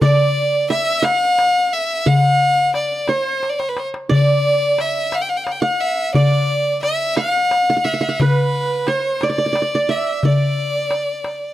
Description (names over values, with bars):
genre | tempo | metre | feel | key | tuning
Arabic maqam ensemble | 59 BPM (dotted quarters) | 6/8 | straight | D maqam rast | A4 = 440 Hz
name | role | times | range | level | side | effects
bright violin | melody | 0.0-11.5 s | B4 to G5 | -18 LUFS | left 1 dB | none
qanun | second line | 0.0-11.5 s | A4 to F#5-50c | -22 LUFS | right 5 dB | none
darbuka | percussion | 0.0-11.4 s | none | -18 LUFS | left 2 dB | none
room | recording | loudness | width
studio reverb | dry, close 1970s-style studio recording | -15 LUFS | side -14 dB against mid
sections
0.0-11.5 A section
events
drum fill 3.4-4.1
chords
none